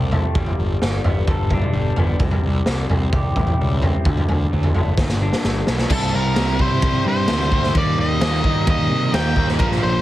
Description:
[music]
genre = quiet-loud alternative rock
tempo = 130 BPM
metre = 4/4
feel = straight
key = unclear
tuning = A4 = 440 Hz
[part]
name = electric guitar through a small old amp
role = arpeggios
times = 0.0-5.9 s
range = G2 to A4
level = -27 LUFS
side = left 2 dB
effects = phaser, digital delay
[part]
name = fuzz picked electric bass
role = bass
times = 0.0-10.0 s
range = F#1 to C3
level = -22 LUFS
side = equal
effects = overdrive
[part]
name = raw garage drum kit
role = drums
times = 0.1-9.8 s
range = crash cymbal, kick drum, ride cymbal, snare drum, toms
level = -20 LUFS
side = equal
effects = none
[part]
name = octave-fuzz lead guitar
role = melody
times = 5.9-10.0 s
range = A4 to G5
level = -23 LUFS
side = left 1 dB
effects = distortion
[part]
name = crunchy overdriven guitar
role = riff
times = 5.9-10.0 s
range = Bb2 to F4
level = -25 LUFS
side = right 10 dB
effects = none
[part]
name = raw garage guitar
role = riff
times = 5.9-10.0 s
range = Bb2 to F4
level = -27 LUFS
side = left 9 dB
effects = overdrive
[sound]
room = small room ambience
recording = heavily compressed radio sound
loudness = -16 LUFS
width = side -15 dB against mid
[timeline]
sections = 0.0-5.9 A section; 5.9-10.0 B section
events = drum fill 5.0-5.9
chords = 0.4 Gadd9; 2.2 C; 4.1 D; 5.0 G; 5.9 C; 7.8 Eb

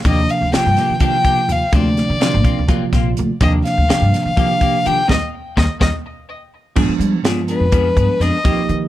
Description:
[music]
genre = electric jazz fusion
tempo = 250 BPM (eighths)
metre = 7/8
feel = straight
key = Eb major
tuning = A4 = 440 Hz
[part]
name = bell-like tine electric piano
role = accompaniment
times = 0.0-8.9 s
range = C3 to G4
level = -20 LUFS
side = right 5 dB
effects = auto-pan
[part]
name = upright bass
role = bass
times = 0.0-8.9 s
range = A#1 to G3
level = -19 LUFS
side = equal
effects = none
[part]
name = rich violin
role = melody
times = 0.1-8.7 s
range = B4 to G5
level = -19 LUFS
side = left 2 dB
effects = plate reverb
[part]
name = clean electric guitar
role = stabs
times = 0.1-8.6 s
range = F3 to Ab4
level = -25 LUFS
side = left 7 dB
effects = lush chorus
[part]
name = crisp fusion drum kit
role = drums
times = 0.1-8.8 s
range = crash cymbal, hi-hat, kick drum, snare drum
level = -18 LUFS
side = equal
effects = none
[sound]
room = light reverb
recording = dark, warm production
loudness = -14 LUFS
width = side -14 dB against mid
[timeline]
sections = 0.0-6.8 A section; 6.8-8.9 B section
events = band accent 5.1-6.8; drum fill 6.4-6.8; violin solo 6.8-8.9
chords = 0.1 Ebmaj9; 1.7 D7alt; 3.4 Ebmaj9; 5.1 Eb5; 6.8 G7b9

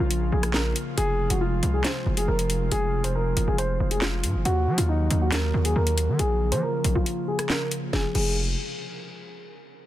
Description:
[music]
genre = hip hop, drill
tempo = 138 BPM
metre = 4/4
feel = half-time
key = F phrygian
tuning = A4 = 440 Hz
[part]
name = dark concert grand piano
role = melody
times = 0.0-8.4 s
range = Eb4 to C5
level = -28 LUFS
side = equal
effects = low-pass filter, digital delay
[part]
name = airy breathy pad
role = sustained chords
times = 0.0-8.1 s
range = C3 to Gb4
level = -32 LUFS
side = equal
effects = chorus, low-pass filter
[part]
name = distorted 808-style bass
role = bass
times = 0.0-8.6 s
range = F1 to Gb3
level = -24 LUFS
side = equal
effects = distortion
[part]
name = drill drum kit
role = drums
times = 0.1-8.2 s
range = crash cymbal, handclaps, hi-hat, rim click, snare drum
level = -29 LUFS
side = left 1 dB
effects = none
[sound]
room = little or no reverb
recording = dense, heavily limited modern master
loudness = -22 LUFS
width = side -14 dB against mid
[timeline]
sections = 0.0-7.9 A section; 7.9-9.7 B section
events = filter sweep 0.0-7.9; break 7.1-7.9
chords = 0.0 Bbm; 1.0 Fm; 4.5 Ebm; 6.2 Bbm; 7.9 Fm

